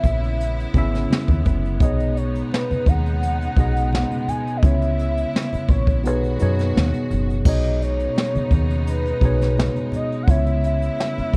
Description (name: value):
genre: R&B, neo-soul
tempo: 85 BPM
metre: 4/4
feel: swing 53% on 16ths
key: B major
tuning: A4 = 440 Hz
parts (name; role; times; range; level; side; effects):
- warm velvety synth lead; melody; 0.0-11.4 s; B4 to G#5; -29 LUFS; equal; chorus
- tine electric piano; accompaniment; 0.0-11.4 s; B2 to E5; -28 LUFS; equal; none
- clear studio string section; sustained chords; 0.0-11.4 s; C#3 to F#4; -36 LUFS; equal; none
- deep dub fingered electric bass; bass; 0.0-11.4 s; F#1 to F#2; -24 LUFS; equal; none
- jazz brush drum kit; drums; 0.0-11.4 s; crash cymbal, hi-hat, kick drum, snare drum; -22 LUFS; equal; none
- congas; percussion; 0.0-11.4 s; none; -34 LUFS; equal; none
room: little or no reverb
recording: dark, warm production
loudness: -21 LUFS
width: mono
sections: 0.0-7.5 A section; 7.5-11.4 A section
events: kick muted 6.0-7.5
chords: 0.0 C#m7; 1.8 B69; 4.6 C#m7; 6.0 B6; 7.5 B69; 10.3 C#m7